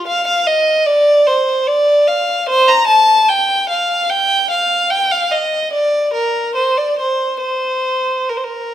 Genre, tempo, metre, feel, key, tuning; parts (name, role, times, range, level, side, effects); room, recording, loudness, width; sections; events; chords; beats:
classical, baroque-style suite movement for unaccompanied violin; 74 BPM; 3/4; rubato; Bb major; A4 = 441 Hz
rich violin; solo; 0.0-8.7 s; Bb4 to Bb5; -12 LUFS; equal
wet recital hall reverb, RT60 1.8 s; minimal, uncompressed stereo recording; -12 LUFS; side -11 dB against mid
0.0-8.7 A section
| 0.07 0.87 1.67 | 2.48 3.28 4.09 | 4.91 5.73 6.56 | 7.42 8.29